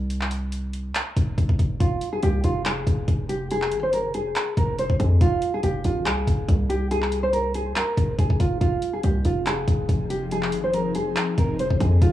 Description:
hip hop, trap; 141 BPM; 4/4; half-time; F minor; A4 = 443 Hz
hard-hitting 808-style bass; bass; 0.0-12.1 s; F1 to F2; -24 LUFS; equal
trap drum kit; drums; 0.1-12.1 s; handclaps, hi-hat, kick drum; -24 LUFS; equal; cassette tape
nylon-string guitar; melody; 1.8-12.1 s; F4 to C5; -25 LUFS; equal; low-pass filter, analog delay
ethereal airy pad; sustained chords; 9.3-12.1 s; F3 to Ab4; -29 LUFS; left 2 dB; ensemble chorus, built-in reverb, phaser, cassette tape
light reverb; home recording on cassette, small room ambience; -21 LUFS; side -13 dB against mid
0.0-12.1 A section
break 0.0-1.8
0.0 Fm; 8.6 Fm7
| 0.10 0.53 0.95 1.38 | 1.80 2.23 2.65 3.08 | 3.51 3.93 4.36 4.78 | 5.21 5.63 6.06 6.48 | 6.91 7.33 7.76 8.19 | 8.61 9.04 9.46 9.89 | 10.31 10.74 11.16 11.59 | 12.02

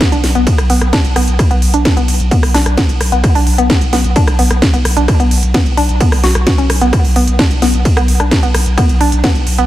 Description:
driving peak-time techno; 130 BPM; 4/4; straight; B minor; A4 = 438 Hz
electronic kick drum; drums; 0.0-9.3 s; -13 LUFS; equal
techno drum kit; drums; 0.0-9.7 s; hi-hat, ride cymbal, rim click, snare drum; -17 LUFS; equal
woody wave-folded pluck; riff; 0.1-9.7 s; B3 to F#4; -16 LUFS; equal; chorus, tube saturation, sidechain pumping, analog delay
saturated sub bass; bass; 0.1-9.7 s; B1; -15 LUFS; equal; overdrive, sidechain pumping, low-pass filter
light reverb; faint mains hum; -9 LUFS; side -14 dB against mid
0.0-9.7 A section
0.01 0.47 0.93 | 1.39 1.85 2.31 2.77 | 3.24 3.70 4.16 4.62 | 5.08 5.54 6.01 6.47 | 6.93 7.39 7.85 8.31 | 8.78 9.24

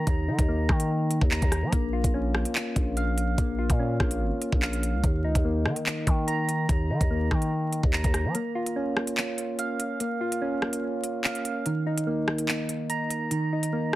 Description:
hip hop, drill; 145 BPM; 4/4; half-time; Bb minor; A4 = 442 Hz
soft electric-piano-like synth keys; arpeggios; 0.0-14.0 s; Eb3 to Bb5; -28 LUFS; equal; chorus, digital delay
growling 808-style bass; bass; 0.0-8.3 s; Ab1 to Gb3; -28 LUFS; equal
drill drum kit; drums; 0.1-14.0 s; handclaps, hi-hat, kick drum, rim click; -26 LUFS; equal
little or no reverb; dense, heavily limited modern master, vinyl crackle; -24 LUFS; side -16 dB against mid
0.0-14.0 A section
break 8.3-14.0
0.0 Eb5; 1.7 Bbm; 5.0 Eb5; 8.3 Bbm; 11.7 Eb5
| 0.07 0.48 0.90 1.31 | 1.73 2.14 2.55 2.97 | 3.38 3.79 4.21 4.62 | 5.04 5.45 5.86 6.28 | 6.69 7.11 7.52 7.93 | 8.35 8.76 9.17 9.59 | 10.00 10.41 10.83 11.24 | 11.66 12.07 12.48 12.90 | 13.31 13.72

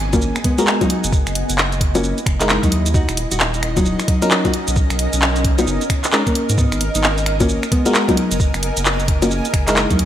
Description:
UK garage, two-step garage; 132 BPM; 4/4; swing 62% on 16ths; A4 = 440 Hz
ethereal airy pad; sustained chords; 0.0-10.1 s; D#5; -30 LUFS; right 3 dB; ensemble chorus, built-in reverb, sidechain pumping
saturated sub bass; bass; 0.0-10.1 s; D#1 to G#2; -21 LUFS; equal; tube saturation, sidechain pumping
impact; sound effects; 0.4-1.1 s; barely audible
granular cloud pad; texture; 0.0-10.1 s; B3 to G#5; -27 LUFS; left 1 dB; built-in reverb, sidechain pumping
nylon-string guitar; melody; 0.1-10.1 s; F#3 to F#4; -23 LUFS; equal; digital delay
electronic kick drum; drums; 0.1-10.0 s; -19 LUFS; equal; studio reverb
garage drum kit; drums; 0.1-10.1 s; bongos, finger snaps, handclaps, hi-hat, shaker; -20 LUFS; left 1 dB; studio reverb
FM electric piano; stabs; 0.6-10.0 s; F#3 to A#4; -22 LUFS; equal; chorus, digital delay
light reverb; bright 1980s-style digital production; -15 LUFS; side -11 dB against mid
0.0-10.1 A section
impact 0.0-1.1
0.0 G#m9; 0.9 F#13; 2.7 D#m7; 4.5 Bmaj13; 6.6 G#m9; 8.2 F#13
0.22 0.67 | 1.13 1.58 2.04 2.49 | 2.94 3.40 3.85 4.31 | 4.76 5.22 5.67 6.13 | 6.58 7.04 7.49 7.95 | 8.40 8.85 9.31 9.76

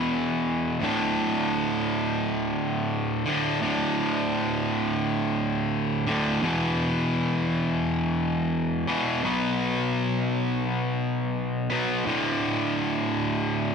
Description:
rock; 85 BPM; 4/4; straight; D major; A4 = 440 Hz
cranked stack guitar; solo; 0.0-13.7 s; D2 to B3; -23 LUFS; equal; overdrive, tape echo
moderate large studio reverb, RT60 1.1 s; -23 LUFS; side -6 dB against mid
0.8-13.7 A section
0.0 E5; 0.8 D5; 6.4 E5; 9.2 B5; 12.1 D5
0.10 | 0.80 1.51 2.21 2.91 | 3.61 4.31 5.01 5.72 | 6.42 7.12 7.83 8.53 | 9.23 9.94 10.64 11.35 | 12.05 12.76 13.46

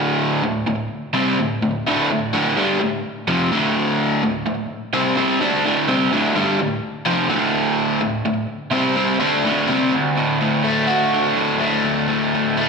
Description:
rock; 126 BPM; 4/4; straight; A4 = 439 Hz
overdriven electric guitar; solo; 0.0-12.7 s; D2 to F#4; -17 LUFS; equal; slapback echo
wet scoring stage reverb, RT60 1.8 s, digital ambience; big arena sound; -17 LUFS; side -4 dB against mid
0.0-9.9 A section; 9.9-12.7 B section
0.0 D5; 9.9 D
| 0.45 0.92 1.39 1.86 | 2.34 2.81 3.28 3.75 | 4.23 4.70 5.17 5.65 | 6.12 6.60 7.07 7.55 | 8.02 8.50 8.98 9.45 | 9.93 10.41 10.89 11.37 | 11.85 12.33

